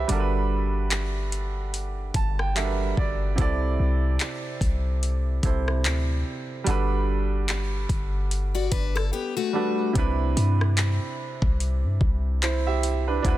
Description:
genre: contemporary R&B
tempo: 73 BPM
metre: 4/4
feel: swing 58% on 16ths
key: unclear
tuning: A4 = 440 Hz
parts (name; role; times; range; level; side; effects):
- clear baby grand piano; accompaniment; 0.0-13.4 s; C3 to A5; -29 LUFS; right 6 dB; none
- warm 808-style bass; bass; 0.0-13.4 s; G1 to G2; -25 LUFS; equal; none
- smooth R&B drum kit; drums; 0.1-13.4 s; handclaps, hi-hat, kick drum, rim click; -28 LUFS; equal; vintage 12-bit sampler grit
- picked plugged-in steel-string acoustic guitar; arpeggios; 8.5-9.9 s; A3 to D5; -28 LUFS; left 8 dB; tape echo
room: little or no reverb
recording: dense, heavily limited modern master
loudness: -22 LUFS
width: side -14 dB against mid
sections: 0.0-10.0 A section; 10.0-13.4 B section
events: grand piano fill 1.7-3.4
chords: 0.1 Gmaj7; 3.4 C69; 6.7 Gmaj7; 10.0 Cmaj9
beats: | 0.09 0.91 1.74 2.56 | 3.38 4.20 5.02 5.84 | 6.67 7.49 8.31 9.13 | 9.95 10.78 11.60 12.42 | 13.24

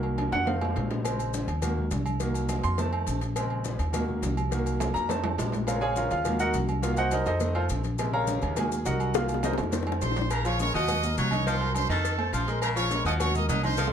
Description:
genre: latin, salsa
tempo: 207 BPM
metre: 4/4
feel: straight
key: Bb minor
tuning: A4 = 440 Hz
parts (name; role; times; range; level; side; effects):
- bright upright piano; accompaniment; 0.0-13.9 s; C3 to C6; -30 LUFS; right 1 dB; none
- upright bass; bass; 0.0-13.9 s; Bb1 to F2; -29 LUFS; equal; none
- agogo bells and timbales; percussion; 0.0-13.9 s; none; -36 LUFS; right 5 dB; none
- congas; percussion; 0.0-13.9 s; none; -35 LUFS; left 2 dB; none
- cowbell and bongos; percussion; 0.2-13.9 s; none; -36 LUFS; left 7 dB; none
- maracas; percussion; 1.1-13.9 s; none; -42 LUFS; left 9 dB; none
- brilliant trumpet section; melody; 10.0-13.9 s; A4 to Eb6; -29 LUFS; right 1 dB; none
- clear baritone saxophone; second line; 10.3-13.9 s; Db3 to Gb3; -34 LUFS; left 3 dB; none
room: moderate studio reverb, RT60 0.8 s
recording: dark, warm production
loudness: -25 LUFS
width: side -8 dB against mid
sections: 0.0-10.3 A section; 10.3-13.9 B section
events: upright piano solo 0.0-10.3; drum fill 0.2-1.0, 4.8-5.7, 9.1-10.3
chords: 0.5 F7; 1.0 Bbm7; 1.6 Ebm; 2.2 Cm7b5; 2.8 F7; 3.4 Bbm7; 3.9 Ebm; 4.5 Cm7b5; 5.1 F7; 5.7 Bbm7; 6.3 Ebm; 6.8 Cm7b5; 7.4 F7; 8.0 Bbm7; 8.6 Ebm; 9.1 Cm7b5; 9.7 F7; 10.3 Bbm7; 10.9 Ebm; 11.5 Cm7b5; 12.0 F7; 12.6 Bbm7; 13.2 Ebm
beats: 0.18 0.47 0.76 | 1.05 1.34 1.63 1.92 | 2.21 2.50 2.78 3.07 | 3.36 3.65 3.94 4.23 | 4.52 4.81 5.10 5.39 | 5.68 5.97 6.25 6.54 | 6.83 7.12 7.41 7.70 | 7.99 8.28 8.57 8.86 | 9.15 9.44 9.73 10.02 | 10.31 10.60 10.88 11.17 | 11.46 11.75 12.04 12.33 | 12.62 12.91 13.20 13.49 | 13.78

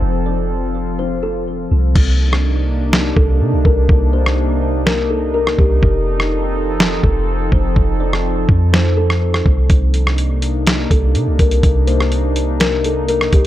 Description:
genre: hip hop, atmospheric cloud-rap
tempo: 124 BPM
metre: 4/4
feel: half-time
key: C dorian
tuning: A4 = 440 Hz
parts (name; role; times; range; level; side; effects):
- warbly tape-like pad; sustained chords; 0.0-13.5 s; C3 to A4; -21 LUFS; equal; chorus, built-in reverb, sidechain pumping
- soft 808-style bass; bass; 0.0-13.5 s; F1 to C3; -16 LUFS; equal; none
- kalimba; melody; 0.3-13.5 s; G4 to D5; -22 LUFS; left 3 dB; low-pass filter, tape echo
- lo-fi sampler-style drum kit; drums; 2.0-13.5 s; crash cymbal, hi-hat, kick drum, rim click, snare drum; -16 LUFS; equal; none
room: light reverb, digital ambience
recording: echo-heavy mix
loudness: -13 LUFS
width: side -13 dB against mid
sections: 0.0-2.0 A section; 2.0-13.5 B section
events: filter sweep 0.0-2.0; hi-hats muted 2.0-9.7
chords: 0.0 F; 2.0 Cm9; 5.8 F7; 9.7 Cm9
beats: | 0.02 0.50 0.99 1.47 | 1.96 2.44 2.92 3.41 | 3.89 4.37 4.86 5.34 | 5.83 6.31 6.79 7.28 | 7.76 8.24 8.73 9.21 | 9.70 10.18 10.66 11.15 | 11.63 12.12 12.60 13.08

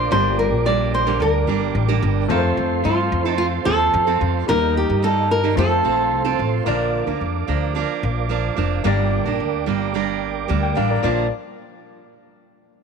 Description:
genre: acoustic pop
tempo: 110 BPM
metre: 4/4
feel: straight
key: Bb major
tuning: A4 = 440 Hz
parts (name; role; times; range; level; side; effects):
- flamenco guitar; melody; 0.0-6.4 s; F4 to D5; -20 LUFS; equal; none
- fingerpicked steel-string acoustic guitar; accompaniment; 0.0-11.3 s; G2 to Bb4; -23 LUFS; right 12 dB; none
- warm grand piano; accompaniment; 0.0-11.3 s; G3 to G5; -27 LUFS; left 14 dB; none
- mellow tonewheel organ; sustained chords; 0.0-11.3 s; Bb2 to D6; -29 LUFS; right 12 dB; chorus vibrato, wide subtle chorus
- upright bass; bass; 0.0-11.3 s; F1 to G2; -22 LUFS; left 2 dB; none
room: light reverb, small room ambience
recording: 1960s-style stereo with parts hard left and right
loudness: -17 LUFS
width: side -6 dB against mid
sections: 0.0-6.7 A section; 6.7-11.0 B section; 11.0-12.8 C section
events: none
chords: 0.1 Gm; 2.3 F; 4.5 Eb; 5.6 F; 6.7 Bb; 8.9 Gm; 11.0 Bb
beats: | 0.12 0.66 1.21 1.75 | 2.30 2.85 3.39 3.94 | 4.48 5.03 5.58 6.12 | 6.67 7.21 7.76 8.31 | 8.85 9.40 9.94 10.49 | 11.04

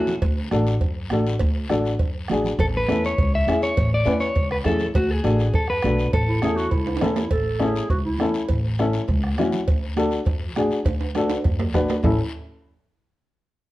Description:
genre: latin, cumbia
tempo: 203 BPM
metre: 4/4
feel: straight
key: A major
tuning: A4 = 440 Hz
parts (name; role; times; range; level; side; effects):
- clean electric guitar; melody; 0.0-0.1, 2.6-7.1 s; F#4 to E5; -24 LUFS; left 1 dB; spring reverb
- dark upright piano; accompaniment; 0.0-12.2 s; C#4 to B4; -24 LUFS; left 3 dB; none
- upright bass; bass; 0.0-12.2 s; A1 to F#2; -25 LUFS; equal; none
- congas; percussion; 0.1-12.1 s; none; -29 LUFS; right 4 dB; none
- guiro; percussion; 0.1-12.1 s; none; -40 LUFS; left 4 dB; none
- bombo; percussion; 0.2-12.1 s; none; -25 LUFS; right 1 dB; none
- cowbell and timbales; percussion; 0.2-12.1 s; none; -31 LUFS; right 4 dB; none
- breathy clarinet; second line; 6.3-8.6, 12.0-12.2 s; E4 to A4; -28 LUFS; right 1 dB; none
room: moderate large studio reverb, RT60 0.9 s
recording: worn, warbling old tape, cassette tape, warbly pitch drift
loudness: -19 LUFS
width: side -16 dB against mid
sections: 0.0-7.3 A section; 7.3-12.0 B section; 12.0-13.2 C section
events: drum fill 6.9-7.3, 10.9-12.0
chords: 0.2 D; 2.6 A; 4.9 D; 6.1 A; 9.7 D; 12.0 A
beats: | 0.22 0.51 0.81 1.11 | 1.40 1.70 1.99 2.29 | 2.58 2.88 3.17 3.47 | 3.77 4.06 4.36 4.65 | 4.95 5.24 5.54 5.83 | 6.13 6.42 6.72 7.02 | 7.31 7.61 7.90 8.20 | 8.49 8.79 9.08 9.38 | 9.68 9.97 10.27 10.56 | 10.86 11.15 11.45 11.74 | 12.04

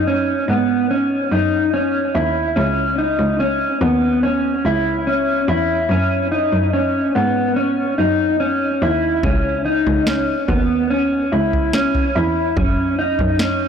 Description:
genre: dream pop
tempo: 72 BPM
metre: 4/4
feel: straight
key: C# minor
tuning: A4 = 440 Hz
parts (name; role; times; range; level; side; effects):
- mellow electric guitar; arpeggios; 0.0-13.7 s; B3 to E4; -17 LUFS; equal; lush chorus, tape echo
- rich cello; bass; 0.0-13.6 s; C#2 to G#2; -22 LUFS; equal; tube saturation
- booming analog drum machine; drums; 9.2-13.6 s; kick drum, snare drum, toms; -21 LUFS; equal; overdrive
room: moderate huge ambient reverb, RT60 4.7 s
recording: blown-out, overdriven recording, overdrive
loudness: -15 LUFS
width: side -7 dB against mid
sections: 0.0-13.7 A section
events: none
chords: 0.0 F#sus2; 2.6 C#m7; 5.9 F#sus2; 9.2 C#m7; 12.6 F#5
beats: 0.07 0.91 1.74 | 2.57 3.41 4.24 5.07 | 5.91 6.74 7.57 8.41 | 9.24 10.07 10.91 11.74 | 12.57 13.41

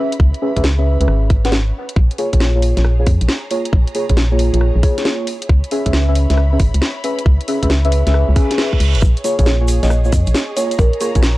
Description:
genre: UK garage, two-step garage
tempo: 136 BPM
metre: 4/4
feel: swing 67% on 16ths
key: unclear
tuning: A4 = 440 Hz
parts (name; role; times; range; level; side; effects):
- deep mellow chord stab; stabs; 0.0-11.2 s; Bb3 to Gb5; -20 LUFS; equal; chorus, phaser, analog delay
- warm studio string section; texture; 0.0-11.4 s; Fb4 to Cb6; -34 LUFS; left 1 dB; sidechain pumping
- garage drum kit; drums; 0.1-11.3 s; hi-hat, rim click, snare drum; -21 LUFS; equal; none
- organ-like FM bass; bass; 0.2-11.4 s; Ab1 to F2; -14 LUFS; equal; none
- electronic kick drum; drums; 0.2-11.2 s; none; -14 LUFS; equal; none
- reverse cymbal; sound effects; 8.4-9.0 s; none; -27 LUFS; right 7 dB; none
- warm analog pad; sustained chords; 9.0-11.4 s; Db5; -30 LUFS; right 6 dB; chorus, sidechain pumping
- egg shaker; percussion; 9.0-11.3 s; none; -32 LUFS; right 2 dB; none
- kalimba; melody; 9.8-11.4 s; Ab4 to Eb5; -24 LUFS; right 1 dB; analog delay
room: little or no reverb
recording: dry, gritty hardware recording, cassette tape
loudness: -13 LUFS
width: side -18 dB against mid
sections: 0.0-11.4 A section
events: fade-in on string section 0.0-11.4; reverse cymbal 8.4-9.0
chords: 0.0 Dbm7; 2.0 Bbm7; 5.3 Dbm7; 9.0 Bbm7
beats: | 0.20 0.64 1.08 1.52 | 1.96 2.41 2.85 3.29 | 3.73 4.17 4.61 5.05 | 5.49 5.93 6.38 6.82 | 7.26 7.70 8.14 8.58 | 9.02 9.46 9.91 10.35 | 10.79 11.23

